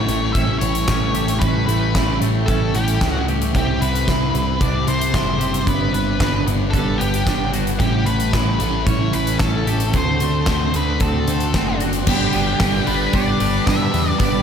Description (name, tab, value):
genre	rock, shoegaze and dream pop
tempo	113 BPM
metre	4/4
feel	straight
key	unclear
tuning	A4 = 440 Hz
part	octave-fuzz lead guitar	melody	0.0-14.4 s	G4 to E5	-24 LUFS	left 1 dB	distortion, tape echo
part	evolving wavetable pad	sustained chords	0.0-14.4 s	C4 to D6	-30 LUFS	right 2 dB	chorus, built-in reverb
part	twangy electric guitar	arpeggios	0.0-14.4 s	E3 to G4	-32 LUFS	left 2 dB	analog chorus, tape echo
part	overdriven semi-hollow guitar	riff	0.0-14.4 s	G2 to G4	-24 LUFS	right 12 dB	reverse reverb
part	thick fuzz guitar	riff	0.0-14.4 s	G2 to D4	-25 LUFS	left 10 dB	distortion, wide subtle chorus
part	growling picked electric bass	bass	0.0-14.4 s	F#1 to G2	-23 LUFS	equal	overdrive
part	huge arena drum kit	drums	0.1-14.3 s	crash cymbal, hi-hat, kick drum, snare drum	-22 LUFS	equal	none
part	cranked stack guitar	riff	12.1-14.4 s	G3 to B4	-25 LUFS	equal	overdrive, phaser
room	light reverb, studio reverb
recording	none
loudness	-16 LUFS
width	side -7 dB against mid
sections	0.0-12.1 A section; 12.1-14.4 B section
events	none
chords	0.0 A7; 3.5 Cmaj9; 5.7 Gmaj7; 7.8 A7; 9.9 D7; 12.1 G